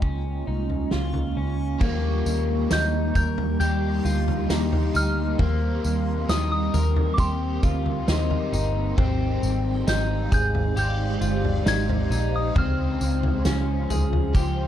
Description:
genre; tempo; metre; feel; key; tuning
dream pop; 67 BPM; 4/4; straight; Eb major; A4 = 440 Hz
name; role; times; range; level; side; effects
ethereal airy pad; sustained chords; 0.0-14.7 s; F3 to C5; -30 LUFS; right 1 dB; ensemble chorus, built-in reverb, phaser, low-pass filter
electric guitar at the edge of break-up; arpeggios; 0.0-14.7 s; Bb3 to Bb4; -30 LUFS; left 5 dB; wide subtle chorus, low-pass filter, tape echo
vintage muted picked electric bass; bass; 0.0-14.7 s; G1 to Eb2; -25 LUFS; equal; none
loose indie drum kit; drums; 0.0-14.6 s; crash cymbal, kick drum, snare drum, tambourine, toms; -26 LUFS; equal; none
backwards swelling texture; texture; 0.0-14.7 s; G4 to Db6; -40 LUFS; right 1 dB; built-in reverb, tape echo
overdriven electric guitar; accompaniment; 1.8-14.7 s; C3 to C5; -34 LUFS; right 5 dB; tremolo, ensemble chorus
soft synth bell; melody; 2.7-14.7 s; C6 to Ab6; -31 LUFS; equal; chorus, phaser, tape echo
room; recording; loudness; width
small room ambience; dark, warm production; -21 LUFS; side -11 dB against mid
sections
0.0-1.8 A section; 1.8-14.7 B section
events
none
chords
0.0 Dbmaj7; 1.8 Ebmaj7; 5.4 Cm7/Eb; 9.0 Abmaj7; 12.6 Dbmaj7

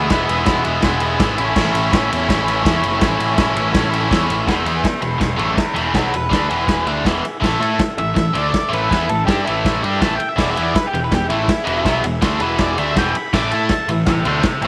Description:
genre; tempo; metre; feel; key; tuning
garage rock duo or trio; 163 BPM; 4/4; straight; E mixolydian; A4 = 440 Hz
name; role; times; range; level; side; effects
overdriven combo organ; sustained chords; 0.0-14.7 s; E4 to E5; -31 LUFS; equal; none
biting overdriven guitar; riff; 0.0-14.7 s; E2 to A4; -22 LUFS; equal; none
fuzz picked electric bass; bass; 0.0-14.7 s; E1 to A2; -26 LUFS; equal; overdrive
vintage drum kit; drums; 0.1-14.7 s; crash cymbal, kick drum, ride cymbal, snare drum; -23 LUFS; equal; none
octave-fuzz lead guitar; melody; 4.5-14.7 s; E4 to D6; -24 LUFS; equal; distortion
room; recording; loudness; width
moderate spring reverb, RT60 1.2 s, small room ambience; none; -18 LUFS; mono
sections
0.0-4.5 A section; 4.5-14.7 B section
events
lead electric guitar solo 4.5-14.7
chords
0.0 E; 1.4 A; 4.5 E; 7.4 A5; 10.4 E; 13.3 A5

